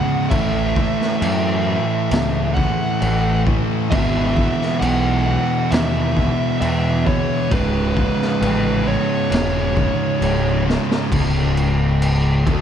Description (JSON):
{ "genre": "stoner and doom metal", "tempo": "67 BPM", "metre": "4/4", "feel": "straight", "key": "C# minor", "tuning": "A4 = 441 Hz", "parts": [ { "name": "fuzz lead guitar", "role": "melody", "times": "0.0-10.6 s", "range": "B4 to F#5", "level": "-24 LUFS", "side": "right 2 dB", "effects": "distortion, tape echo" }, { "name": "distorted electric guitar", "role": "riff", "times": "0.0-12.6 s", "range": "C#2 to A3", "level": "-26 LUFS", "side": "left 1 dB", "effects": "overdrive" }, { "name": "thick fuzz guitar", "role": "riff", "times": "0.0-12.6 s", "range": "C#2 to A3", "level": "-24 LUFS", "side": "left 10 dB", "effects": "distortion" }, { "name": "thick fuzz guitar", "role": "riff", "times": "0.0-12.6 s", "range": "C#2 to A3", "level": "-23 LUFS", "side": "right 8 dB", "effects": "distortion" }, { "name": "fuzz picked electric bass", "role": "bass", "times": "0.3-12.6 s", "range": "C#1 to F#2", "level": "-22 LUFS", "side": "equal", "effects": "overdrive" }, { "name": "raw garage drum kit", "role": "drums", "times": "0.3-12.6 s", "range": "crash cymbal, kick drum, snare drum", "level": "-23 LUFS", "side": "equal", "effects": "none" } ], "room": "light reverb, small room ambience", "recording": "dark, warm production", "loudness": "-16 LUFS", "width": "side -9 dB against mid", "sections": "0.0-11.1 A section; 11.1-12.6 B section", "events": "drum fill 10.7-11.1", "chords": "0.3 A; 3.9 E/G#; 7.5 C#m; 11.1 C#5" }